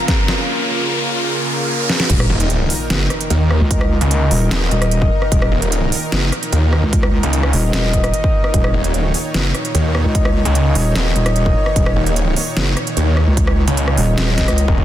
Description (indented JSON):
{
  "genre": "heavy wobble dubstep",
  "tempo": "149 BPM",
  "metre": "4/4",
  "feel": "half-time",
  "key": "unclear",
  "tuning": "A4 = 442 Hz",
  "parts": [
    { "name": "supersaw pad", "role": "sustained chords", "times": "0.0-14.8 s", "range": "Bb2 to Db5", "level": "-24 LUFS", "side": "right 1 dB", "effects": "sidechain pumping" },
    { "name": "riser and sub drop", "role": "sound effects", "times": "0.0-3.7 s", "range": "none", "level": "-21 LUFS", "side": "equal", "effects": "none" },
    { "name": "dubstep drum kit", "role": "drums", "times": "0.1-14.7 s", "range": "crash cymbal, hi-hat, rim click, snare drum", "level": "-22 LUFS", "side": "right 1 dB", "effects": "soft clipping on snare, studio reverb" },
    { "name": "electronic kick drum", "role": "drums", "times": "0.1-14.8 s", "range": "none", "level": "-17 LUFS", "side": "equal", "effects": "studio reverb" },
    { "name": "wobble bass", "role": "bass", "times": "2.1-14.7 s", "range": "Eb1 to Db2", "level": "-17 LUFS", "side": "equal", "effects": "chorus, overdrive" },
    { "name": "snarling distorted saw bass", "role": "bass", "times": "2.3-14.8 s", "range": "Eb1 to Eb2", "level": "-16 LUFS", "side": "equal", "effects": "distortion, overdrive" },
    { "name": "mellow brass ensemble", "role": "stabs", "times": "2.4-14.8 s", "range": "Eb4 to Eb5", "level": "-24 LUFS", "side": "left 3 dB", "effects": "digital delay" }
  ],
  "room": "light reverb",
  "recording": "dense, heavily limited modern master",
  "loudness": "-14 LUFS",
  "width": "side -12 dB against mid",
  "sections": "0.0-2.1 A section; 2.1-14.8 B section",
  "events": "build-up 0.0-2.1; drum fill 0.0-0.5, 1.9; riser 0.0-2.1; drop 2.1-14.8; impact 2.1-3.7",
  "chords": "0.0 Bbm; 2.1 Eb5"
}